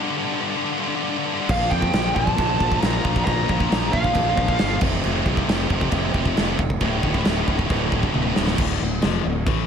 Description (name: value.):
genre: heavy metal.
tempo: 135 BPM.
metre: 4/4.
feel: straight.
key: D minor.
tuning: A4 = 442 Hz.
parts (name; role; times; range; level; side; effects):
high-gain distorted guitar; riff; 0.0-9.7 s; D2 to A3; -26 LUFS; left 14 dB; distortion.
scooped high-gain guitar; riff; 0.0-8.6 s; D2 to F3; -27 LUFS; right 17 dB; distortion.
high-gain lead guitar; melody; 1.5-4.8 s; F5 to Bb5; -24 LUFS; equal; distortion, tape echo.
fuzz fingered electric bass; bass; 1.5-9.7 s; D1 to F2; -24 LUFS; right 1 dB; overdrive.
big rock drum kit; drums; 1.5-9.6 s; china cymbal, crash cymbal, kick drum, snare drum, toms; -23 LUFS; right 1 dB; none.
room: little or no reverb.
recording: none.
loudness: -19 LUFS.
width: side -7 dB against mid.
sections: 0.0-8.6 A section; 8.6-9.7 B section.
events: drum fill 8.1-8.6.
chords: 0.0 G5; 1.5 Bb5; 4.8 F5; 6.8 D5; 8.6 Dm.